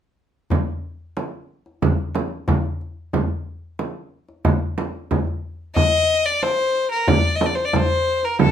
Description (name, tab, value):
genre	Arabic maqam ensemble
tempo	91 BPM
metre	4/4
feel	straight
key	D maqam hijaz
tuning	A4 = 440 Hz
part	darbuka	percussion	0.5-8.5 s	none	-24 LUFS	left 2 dB	none
part	frame drum	percussion	0.5-8.5 s	none	-21 LUFS	right 4 dB	none
part	rich violin	melody	5.8-8.5 s	A4 to Eb5+25c	-18 LUFS	left 3 dB	none
room	moderate studio reverb, RT60 0.6 s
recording	minimal, uncompressed stereo recording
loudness	-19 LUFS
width	side -9 dB against mid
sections	0.5-5.8 A section; 5.8-8.5 B section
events	none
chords	none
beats	| 0.52 1.17 1.83 2.48 | 3.14 3.80 4.45 5.11 | 5.76 6.42 7.08 7.73 | 8.39